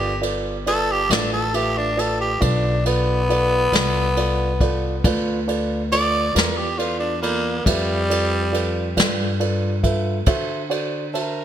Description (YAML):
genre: slow blues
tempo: 46 BPM (dotted quarters)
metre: 12/8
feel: straight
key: G mixolydian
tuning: A4 = 441 Hz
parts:
  - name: growling tenor saxophone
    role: second line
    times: 0.0-11.4 s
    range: G3 to D5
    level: -22 LUFS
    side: equal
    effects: none
  - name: dark baby grand piano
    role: accompaniment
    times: 0.0-11.4 s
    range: F4 to B5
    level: -25 LUFS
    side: right 2 dB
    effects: none
  - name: upright bass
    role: bass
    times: 0.0-11.4 s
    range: G1 to D3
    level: -24 LUFS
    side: left 1 dB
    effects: none
  - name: jazz brush drum kit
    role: drums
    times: 0.2-11.4 s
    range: kick drum, ride cymbal, snare drum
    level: -24 LUFS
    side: equal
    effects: gated reverb
room: moderate plate reverb, RT60 2.9 s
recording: bright 1980s-style digital production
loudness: -18 LUFS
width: side -10 dB against mid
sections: 0.0-11.4 A section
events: tenor saxophone solo 0.0-11.4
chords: 0.0 G9; 10.3 D9